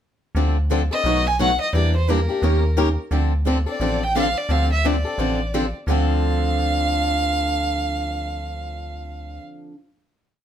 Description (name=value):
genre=acoustic string swing (jazz manouche)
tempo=174 BPM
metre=4/4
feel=swing 59% on 8ths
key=D minor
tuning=A4 = 440 Hz
part: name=metallic FM bass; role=bass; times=0.3-9.4 s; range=A1 to E2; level=-22 LUFS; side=equal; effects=none
part: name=picked steel-string acoustic guitar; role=accompaniment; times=0.4-9.8 s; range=B2 to Bb4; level=-28 LUFS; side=right 7 dB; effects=none
part: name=picked swing-style acoustic guitar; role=accompaniment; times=0.4-9.7 s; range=B2 to Bb4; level=-26 LUFS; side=left 6 dB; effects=none
part: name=dark violin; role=melody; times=0.9-9.4 s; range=Bb4 to G#5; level=-24 LUFS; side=right 1 dB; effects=none
room=light reverb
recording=none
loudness=-18 LUFS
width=side -10 dB against mid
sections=0.4-5.9 A section; 5.9-8.6 final chord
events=none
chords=0.4 Dm7; 1.0 B7; 1.7 Em7b5; 2.4 Eb7; 3.1 Dm7